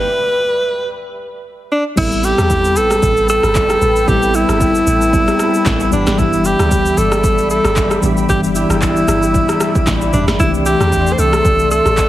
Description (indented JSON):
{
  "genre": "amapiano",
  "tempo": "114 BPM",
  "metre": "4/4",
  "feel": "swing 55% on 16ths",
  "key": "A minor",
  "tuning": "A4 = 440 Hz",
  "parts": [
    { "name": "warm alto saxophone", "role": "melody", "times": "0.0-12.1 s", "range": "D4 to C5", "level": "-15 LUFS", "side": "equal", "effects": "tape echo" },
    { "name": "tine electric piano", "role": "accompaniment", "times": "2.0-12.1 s", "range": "D#3 to A4", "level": "-19 LUFS", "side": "left 1 dB", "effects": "medium stereo tremolo" },
    { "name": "glassy FM pad", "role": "sustained chords", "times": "2.2-12.1 s", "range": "G4 to C6", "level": "-24 LUFS", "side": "left 1 dB", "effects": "ensemble chorus, built-in reverb, sidechain pumping" },
    { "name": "deep log drum bass", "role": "bass", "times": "2.0-12.1 s", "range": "G1 to E2", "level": "-19 LUFS", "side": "equal", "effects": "none" },
    { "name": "deep house drum kit", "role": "drums", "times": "2.0-12.1 s", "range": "crash cymbal, handclaps, kick drum, rim click, shaker, snare drum, toms", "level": "-18 LUFS", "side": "equal", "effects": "overdrive" }
  ],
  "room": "light reverb",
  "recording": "heavily compressed radio sound",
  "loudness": "-12 LUFS",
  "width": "side -14 dB against mid",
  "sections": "0.0-2.0 A section; 2.0-12.1 B section",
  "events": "stop 0.0-2.0",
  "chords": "0.0 N.C.; 2.0 Am9; 5.9 G6; 10.4 C69",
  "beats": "0.40 0.92 1.45 | 1.97 2.50 3.03 3.55 | 4.08 4.61 5.13 5.66 | 6.18 6.71 7.24 7.76 | 8.29 8.82 9.34 9.87 | 10.39 10.92 11.45 11.97"
}